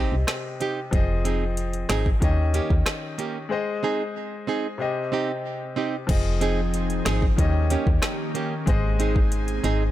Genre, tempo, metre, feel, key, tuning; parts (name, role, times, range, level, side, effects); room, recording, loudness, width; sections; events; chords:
dancehall; 93 BPM; 4/4; straight; F minor; A4 = 440 Hz
clear concert grand piano; accompaniment; 0.0-9.9 s; C3 to Eb5; -29 LUFS; left 4 dB
nylon-string guitar; arpeggios; 0.0-9.8 s; Bb3 to Ab4; -29 LUFS; right 5 dB; digital delay
woody FM bass; bass; 0.0-9.9 s; F1 to Eb2; -24 LUFS; equal
afro-pop drum kit; drums; 0.3-9.8 s; crash cymbal, hi-hat, kick drum, rim click, snare drum; -24 LUFS; equal
airy breathy pad; sustained chords; 6.1-9.9 s; Eb3 to Ab4; -31 LUFS; equal; chorus, sidechain pumping
digital ambience; -22 LUFS; side -14 dB against mid
0.0-6.1 A section; 6.1-9.9 B section
break 3.5-6.1
0.0 Cm; 0.9 Fm7; 2.2 Eb7; 3.5 Ab; 4.8 Cm; 6.1 Fm7; 7.4 Eb7; 8.7 Ab